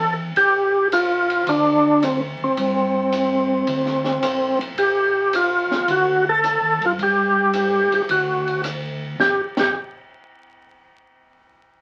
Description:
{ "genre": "soul jazz organ trio", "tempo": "109 BPM", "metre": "4/4", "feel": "swing 69% on 8ths", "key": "unclear", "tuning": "A4 = 444 Hz", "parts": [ { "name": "percussive tonewheel organ", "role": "melody", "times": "0.0-9.7 s", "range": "C4 to A4", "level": "-20 LUFS", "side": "equal", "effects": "slow rotary speaker, overdrive, chorus vibrato" }, { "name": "mellow tonewheel organ", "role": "bass", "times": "0.0-9.7 s", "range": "G1 to G2", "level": "-32 LUFS", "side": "equal", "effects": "chorus vibrato, slow rotary speaker" }, { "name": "open jazz drum kit", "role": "drums", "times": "0.4-9.7 s", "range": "crash cymbal, hi-hat, kick drum, ride cymbal, rim click, snare drum", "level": "-32 LUFS", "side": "equal", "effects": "none" } ], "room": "wet studio ambience, RT60 0.5 s", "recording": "very old 78 rpm record, vinyl crackle", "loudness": "-19 LUFS", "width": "mono", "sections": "0.4-9.2 A section; 9.2-11.4 B section", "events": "none", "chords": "0.4 Fadd9/A; 1.5 Csus2/D; 2.6 Gsus4; 3.7 Bbadd9; 4.8 Fadd9/A; 5.9 D; 7.0 N.C.; 8.1 D; 9.2 N.C.", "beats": "| 0.36 0.91 1.47 2.02 | 2.57 3.12 3.67 4.23 | 4.78 5.33 5.88 6.44 | 6.99 7.54 8.09 8.64 | 9.20" }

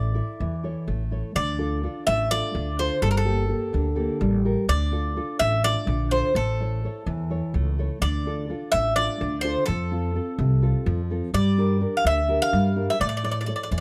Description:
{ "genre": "greek folk, Greek bouzouki band", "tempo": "252 BPM (eighths)", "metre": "7/8", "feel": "straight", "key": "D minor", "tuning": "A4 = 440 Hz", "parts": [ { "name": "Greek bouzouki", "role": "melody", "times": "0.0-13.8 s", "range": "A4 to F5", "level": "-28 LUFS", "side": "equal", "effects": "none" }, { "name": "nylon-string guitar", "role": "accompaniment", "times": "0.0-13.8 s", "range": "C3 to E5", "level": "-30 LUFS", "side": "equal", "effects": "none" }, { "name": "upright bass", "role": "bass", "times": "0.0-13.8 s", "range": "G1 to A2", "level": "-28 LUFS", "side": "equal", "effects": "none" } ], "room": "moderate studio reverb, RT60 0.5 s", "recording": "close, detailed microphones", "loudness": "-24 LUFS", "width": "mono", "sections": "0.0-1.4 A section; 1.4-13.8 B section", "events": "none", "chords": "0.0 A; 1.4 Dm; 3.0 Gmadd9; 4.7 Dm; 6.4 A; 8.0 Dm; 9.7 F; 11.3 Gm; 13.0 A", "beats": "0.16 0.40 0.64 0.88 1.12 | 1.35 1.59 1.83 2.07 2.31 2.54 2.78 | 3.02 3.26 3.50 3.74 3.97 4.21 4.45 | 4.69 4.92 5.16 5.40 5.64 5.88 6.11 | 6.35 6.59 6.83 7.07 7.30 7.54 7.78 | 8.02 8.25 8.49 8.73 8.96 9.20 9.44 | 9.68 9.91 10.15 10.39 10.63 10.86 11.10 | 11.34 11.57 11.81 12.05 12.29 12.52 12.76 | 13.00 13.23 13.47 13.71" }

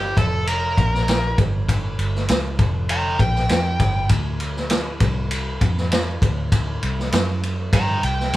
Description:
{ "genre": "blues rock power trio and southern rock", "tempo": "99 BPM", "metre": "4/4", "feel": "straight", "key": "unclear", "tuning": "A4 = 437 Hz", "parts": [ { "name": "overdriven slide guitar", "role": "melody", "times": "0.0-4.1, 7.7-8.4 s", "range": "G4 to Bb5", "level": "-23 LUFS", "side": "equal", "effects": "none" }, { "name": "vintage muted fingered electric bass", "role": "bass", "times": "0.0-8.4 s", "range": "F1 to G2", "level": "-23 LUFS", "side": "equal", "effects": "none" }, { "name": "vintage drum kit", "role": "drums", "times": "0.2-8.4 s", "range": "kick drum, ride cymbal, snare drum", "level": "-21 LUFS", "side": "equal", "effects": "none" } ], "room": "light reverb", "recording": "band playing live in one room", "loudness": "-18 LUFS", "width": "side -16 dB against mid", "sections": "0.0-8.4 A section", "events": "electric slide guitar solo 0.0-8.4", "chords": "0.2 Fadd11; 0.8 N.C.; 2.6 Fsus24; 3.2 Gm7; 4.1 N.C.; 7.7 C5", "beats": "0.47 1.08 | 1.69 2.29 2.90 3.50 | 4.11 4.71 5.32 5.92 | 6.53 7.13 7.73 8.34" }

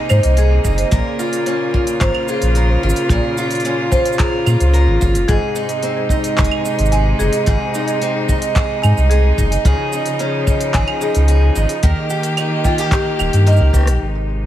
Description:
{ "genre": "folktronica", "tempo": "110 BPM", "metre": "4/4", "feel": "straight", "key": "Ab major", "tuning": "A4 = 440 Hz", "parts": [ { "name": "bright string quartet", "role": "sustained chords", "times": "0.0-14.5 s", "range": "C3 to G4", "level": "-23 LUFS", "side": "equal", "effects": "low-pass filter" }, { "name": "picked acoustic archtop guitar", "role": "arpeggios", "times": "0.0-14.5 s", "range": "Ab2 to Bb4", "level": "-20 LUFS", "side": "right 1 dB", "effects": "ping-pong delay" }, { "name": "marimba with medium mallets", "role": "second line", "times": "0.1-13.6 s", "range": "G4 to Ab5", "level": "-24 LUFS", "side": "left 2 dB", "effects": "digital delay" }, { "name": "warm sub bass", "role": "bass", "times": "0.1-14.5 s", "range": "Eb1 to Bb2", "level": "-14 LUFS", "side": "equal", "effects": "tube saturation" }, { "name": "organic electronic drum kit", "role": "drums", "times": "0.1-14.5 s", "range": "cabasa, claves, handclaps, hi-hat, rim click", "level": "-26 LUFS", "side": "right 2 dB", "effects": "overdrive, low-pass filter on hats, studio reverb, low-pass filter on perc, low-pass filter on snare" }, { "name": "kick drum", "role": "drums", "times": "0.6-13.8 s", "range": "none", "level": "-18 LUFS", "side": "equal", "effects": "studio reverb" } ], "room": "little or no reverb", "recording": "vinyl crackle", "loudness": "-13 LUFS", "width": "side -12 dB against mid", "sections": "0.0-14.0 A section", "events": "drum fill 13.7", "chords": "0.0 Ab; 0.9 Bbm; 5.3 Ab; 9.7 Dbadd9; 11.8 Eb", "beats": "0.38 | 0.92 1.47 2.01 2.56 | 3.10 3.65 4.20 4.74 | 5.29 5.83 6.38 6.92 | 7.47 8.01 8.56 9.10 | 9.65 10.20 10.74 11.29 | 11.83 12.38 12.92 13.47 | 14.01" }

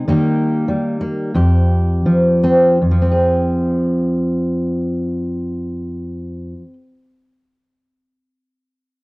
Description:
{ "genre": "folk, solo fingerstyle acoustic guitar", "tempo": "75-104 BPM", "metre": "4/4", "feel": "rubato", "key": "F minor", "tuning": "A4 = 436 Hz", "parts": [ { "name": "fingerpicked steel-string acoustic guitar", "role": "solo", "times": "0.0-6.8 s", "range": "F2 to Ab4", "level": "-15 LUFS", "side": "equal", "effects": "cassette tape" } ], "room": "light reverb, studio reverb", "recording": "home recording on cassette", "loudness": "-14 LUFS", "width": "side -25 dB against mid", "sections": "0.0-2.8 A section; 2.8-9.0 B section", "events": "slowing down 0.0-2.8", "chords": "0.1 Eb; 1.3 Fsus2; 2.8 Fm", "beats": "| 0.08 0.69 1.34 2.05 | 2.82 3.59 4.36 5.12 | 5.89 6.66" }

